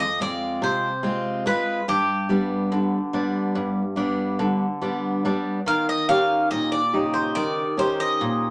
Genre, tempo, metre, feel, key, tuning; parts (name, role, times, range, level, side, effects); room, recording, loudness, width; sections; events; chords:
greek folk; 142 BPM (eighths); 9/8; straight; G phrygian dominant; A4 = 437 Hz
Greek bouzouki; melody; 0.0-8.5 s; G4 to F5; -26 LUFS; equal
picked steel-string acoustic guitar; accompaniment; 0.0-8.5 s; F2 to G4; -25 LUFS; equal
moderate studio reverb, RT60 0.6 s; -23 LUFS; mono
0.0-8.5 A section
0.0 Fm; 1.9 G; 5.7 Eb7